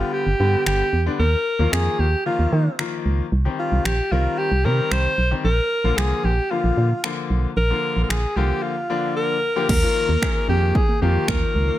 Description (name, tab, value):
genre	dance-pop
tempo	113 BPM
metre	4/4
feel	straight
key	Eb major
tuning	A4 = 439 Hz
part	bright alto saxophone	melody	0.0-11.8 s	F4 to C5	-22 LUFS	equal	none
part	bright grand piano	accompaniment	0.0-11.7 s	D3 to Bb4	-26 LUFS	left 5 dB	sidechain pumping
part	organ-like FM bass	bass	0.0-11.7 s	G1 to Eb3	-20 LUFS	right 1 dB	sidechain pumping
part	punchy analog drum machine	drums	0.7-11.4 s	crash cymbal, finger snaps, kick drum	-24 LUFS	equal	none
part	wide unison pluck	arpeggios	9.7-11.8 s	Eb3 to Bb3	-32 LUFS	right 5 dB	none
room	little or no reverb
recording	none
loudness	-18 LUFS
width	side -14 dB against mid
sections	0.0-9.7 A section; 9.7-11.8 B section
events	kick muted 0.1-1.2; silent gap 8.6-9.7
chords	0.0 G; 1.2 Ebsus2; 3.3 Cm; 5.4 Bb; 9.7 Ebsus2